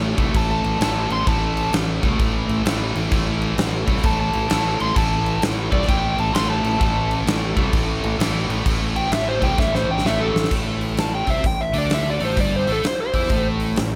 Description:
blues rock power trio and southern rock; 130 BPM; 4/4; swing 64% on 8ths; A minor; A4 = 439 Hz
biting overdriven guitar; riff; 0.0-14.0 s; G2 to E4; -27 LUFS; equal
fuzz fingered electric bass; bass; 0.0-14.0 s; G1 to E2; -27 LUFS; equal; overdrive
huge arena drum kit; drums; 0.2-13.9 s; crash cymbal, hi-hat, kick drum, snare drum; -25 LUFS; equal
overdriven slide guitar; melody; 0.4-13.5 s; A4 to C6; -27 LUFS; equal
light reverb, small room ambience; -20 LUFS; mono
0.0-10.5 A section; 10.5-14.0 B section
electric slide guitar solo 0.0-10.5; drum fill 9.6-10.5
0.0 A5; 10.5 Am

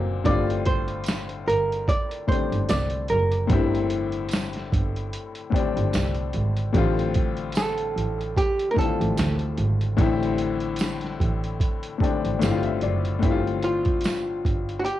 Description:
lo-fi hip hop; 74 BPM; 4/4; swing 57% on 16ths; G dorian; A4 = 440 Hz
archtop guitar, miked and amplified; melody; 0.0-15.0 s; F4 to D5; -26 LUFS; right 2 dB; low-pass filter, cassette tape
warm upright piano; accompaniment; 0.0-15.0 s; A2 to A5; -27 LUFS; left 6 dB; low-pass filter
rich double bass; bass; 0.0-14.8 s; F#1 to D2; -27 LUFS; right 1 dB
boom bap sampler-style drum kit; drums; 0.3-15.0 s; hi-hat, kick drum, snare drum; -26 LUFS; right 1 dB; cassette tape
tambourine; percussion; 1.1-14.3 s; -40 LUFS; right 10 dB
moderate studio reverb, RT60 0.6 s; home recording on cassette; -22 LUFS; side -13 dB against mid
0.0-13.2 A section; 13.2-15.0 B section
break 0.0
0.3 G5; 3.5 C/G; 6.7 Fmaj7/A; 10.0 Am7; 12.4 Gsus2

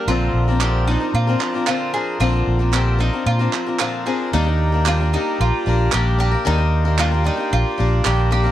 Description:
indie folk with a building arrangement; 113 BPM; 4/4; straight; Eb major; A4 = 438 Hz
picked swing-style acoustic guitar; accompaniment; 0.0-8.5 s; Bb2 to Bb4; -23 LUFS; left 7 dB
hand-pumped harmonium; sustained chords; 0.0-8.5 s; F4 to C6; -27 LUFS; right 3 dB
mandolin; arpeggios; 0.0-8.5 s; Eb4 to Ab4; -24 LUFS; right 4 dB
fingered electric bass; bass; 0.1-8.5 s; Bb1 to Bb2; -18 LUFS; equal
group handclap; percussion; 0.6-8.2 s; -24 LUFS; right 10 dB
little or no reverb; dark, warm production; -16 LUFS; side -12 dB against mid
0.0-4.3 A section; 4.3-8.5 B section
build-up 0.0-4.3
0.1 Bbadd9; 4.3 Ebmaj7

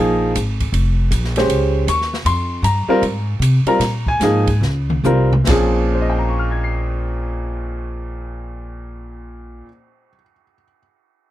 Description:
modal jazz; 135-159 BPM; 4/4; swing 64% on 8ths; Bb dorian; A4 = 440 Hz
bright upright piano; accompaniment; 0.0-10.8 s; Bb2 to C7; -19 LUFS; equal
upright bass; bass; 0.0-9.6 s; F1 to C3; -19 LUFS; equal
open jazz drum kit; drums; 0.4-5.6 s; hi-hat, kick drum, ride cymbal, snare drum, toms; -25 LUFS; equal
small room reverb; dry, close 1970s-style studio recording; -15 LUFS; side -14 dB against mid
0.0-5.5 A section; 5.5-9.0 B section
slowing down 2.3-5.5; drum fill 4.6-5.5
0.0 Bbm9

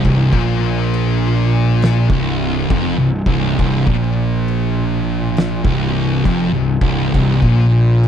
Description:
stoner and doom metal; 68 BPM; 4/4; swing 63% on 8ths; A4 = 440 Hz
thick fuzz guitar; riff; 0.0-8.1 s; C2 to Bb2; -18 LUFS; left 8 dB; distortion
thick fuzz guitar; riff; 0.0-8.1 s; C2 to Bb2; -17 LUFS; right 6 dB; distortion
fuzz fingered electric bass; bass; 0.0-8.1 s; C1 to Bb1; -21 LUFS; equal; overdrive
oversized low-tuned drum kit; drums; 0.0-8.1 s; crash cymbal, kick drum, snare drum; -21 LUFS; equal
little or no reverb; dry, close 1970s-style studio recording; -13 LUFS; side -9 dB against mid
0.0-8.1 A section

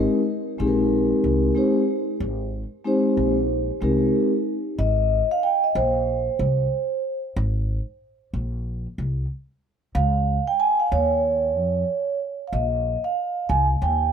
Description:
hip hop, jazz-hop; 93 BPM; 4/4; swing 62% on 16ths; Ab major; A4 = 445 Hz
vibraphone with soft mallets; accompaniment; 0.0-14.1 s; Ab3 to Ab5; -21 LUFS; right 1 dB
upright bass; bass; 0.0-14.1 s; Ab1 to F2; -24 LUFS; equal
wet lush hall reverb, RT60 2.3 s; dreamy mix soaked in reverb; -20 LUFS; side -7 dB against mid
0.0-4.8 A section; 4.8-14.1 B section
vibraphone solo 4.8-14.1
0.0 Abmaj9; 4.8 Abadd9; 9.9 Dbadd9; 12.5 Bbsus2

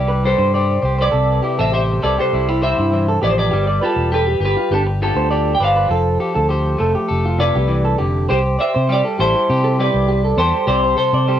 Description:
highlife; 100 BPM; 4/4; straight; C major; A4 = 440 Hz
semi-hollow electric guitar; melody; 0.0-11.4 s; D4 to G5; -19 LUFS; equal; wide subtle chorus, cassette tape, tape echo
electric guitar at the edge of break-up; accompaniment; 0.0-11.4 s; C3 to D5; -23 LUFS; left 3 dB; cassette tape
fingered electric bass; bass; 0.0-11.4 s; E1 to C3; -19 LUFS; equal
electric guitar at the edge of break-up; arpeggios; 0.1-11.4 s; E4 to D5; -21 LUFS; right 3 dB; cassette tape, tape echo
moderate studio reverb, RT60 0.5 s; home recording on cassette; -14 LUFS; side -10 dB against mid
0.0-8.3 A section; 8.3-11.4 B section
0.0 C; 3.5 Gadd9; 5.9 F; 8.3 C

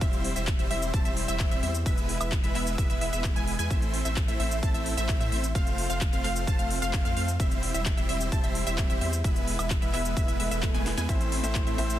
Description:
EDM, festival progressive house; 130 BPM; 4/4; straight; A minor; A4 = 441 Hz
wide unison pluck; arpeggios; 0.0-12.0 s; E5 to A5; -34 LUFS; right 1 dB; sidechain pumping, digital delay
supersaw chords; riff; 0.0-12.0 s; G3 to A5; -32 LUFS; equal; sidechain pumping, digital delay
saturated sub bass; bass; 0.0-12.0 s; E1 to A2; -31 LUFS; equal; tube saturation, sidechain pumping
big-room dance drum kit; drums; 0.0-12.0 s; handclaps, hi-hat, ride cymbal, shaker, snare drum, woodblock; -35 LUFS; equal
electronic kick drum; drums; 0.0-11.6 s; -27 LUFS; equal
swell; sound effects; 10.3-11.1 s; -40 LUFS; right 2 dB
clear concert grand piano; accompaniment; 11.1-12.0 s; A2 to C5; -32 LUFS; left 1 dB; sidechain pumping, digital delay
little or no reverb; dense, heavily limited modern master; -25 LUFS; side -12 dB against mid
0.0-12.0 A section
swell 10.3-11.1; drum fill 10.7-11.1
0.0 C/E; 1.9 E; 3.7 Am; 5.6 F; 7.4 C/E; 9.2 E; 11.1 Am

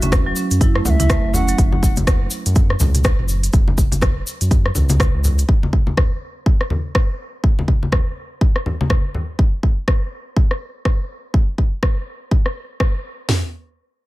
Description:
afro house; 123 BPM; 4/4; swing 59% on 16ths; F# minor; A4 = 440 Hz
bright reedy bansuri; melody; 0.0-1.6 s; E5 to F#5; -29 LUFS; equal; ping-pong delay
marimba with hard mallets; arpeggios; 0.0-1.6 s; F#3 to E4; -25 LUFS; right 3 dB; sidechain pumping, low-pass filter, ping-pong delay
round analog bass; bass; 0.0-5.4 s; F#1 to F#2; -19 LUFS; equal; sidechain pumping
deep house drum kit; drums; 0.0-12.9 s; hi-hat, rim click, toms; -24 LUFS; equal; low-pass filter on hats, low-pass filter on snare, low-pass filter on toms, low-pass filter on cymbals, low-pass filter on room
congas; percussion; 0.0-9.3 s; -22 LUFS; left 1 dB
tube shaker; percussion; 0.0-5.5 s; -29 LUFS; left 2 dB
house drum kit; drums; 0.1-13.4 s; hi-hat, kick drum, snare drum, toms; -16 LUFS; equal
digital ambience; -16 LUFS; side -18 dB against mid
0.0-13.3 A section
filter sweep on drum 0.0-13.3; filter sweep on marimba 0.0-1.6
0.0 F#5; 5.5 N.C.

